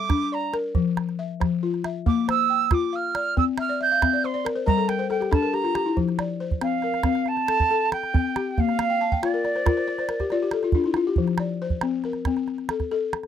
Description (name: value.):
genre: west african traditional, West African string and xylophone music.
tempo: 92 BPM (dotted quarters).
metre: 12/8.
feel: straight.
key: F major.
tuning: A4 = 438 Hz.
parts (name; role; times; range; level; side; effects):
jazz flute; melody; 0.0-10.5 s; D5 to G6; -24 LUFS; right 6 dB; none.
balafon; arpeggios; 0.0-13.3 s; F3 to A5; -24 LUFS; left 6 dB; none.
calabash; percussion; 0.1-13.3 s; none; -24 LUFS; right 3 dB; none.
room: little or no reverb.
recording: dry, close 1970s-style studio recording.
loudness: -21 LUFS.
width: side -9 dB against mid.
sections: 0.0-6.0 A section; 6.0-13.3 B section.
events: flute solo 0.0-6.0; balafon fill 3.6-6.0, 8.8-11.2.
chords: 0.0 Gm (rootless); 0.8 Fsus4; 2.1 Bb; 3.4 C5; 4.7 Gm; 6.0 F; 8.6 Bb; 11.2 F.